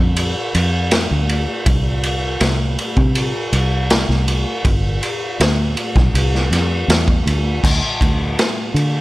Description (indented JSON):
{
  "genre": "psychedelic rock",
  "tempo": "80 BPM",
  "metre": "4/4",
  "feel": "straight",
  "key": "unclear",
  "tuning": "A4 = 440 Hz",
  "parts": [
    { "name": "fingered electric bass", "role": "bass", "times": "0.0-9.0 s", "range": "G1 to D3", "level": "-18 LUFS", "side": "equal", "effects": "none" },
    { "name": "raw garage drum kit", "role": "drums", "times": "0.2-8.9 s", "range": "crash cymbal, kick drum, ride cymbal, snare drum", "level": "-17 LUFS", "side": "equal", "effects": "none" }
  ],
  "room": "light reverb",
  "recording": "none",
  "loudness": "-15 LUFS",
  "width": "side -18 dB against mid",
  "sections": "0.0-7.6 A section; 7.6-9.0 B section",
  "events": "none",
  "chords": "none"
}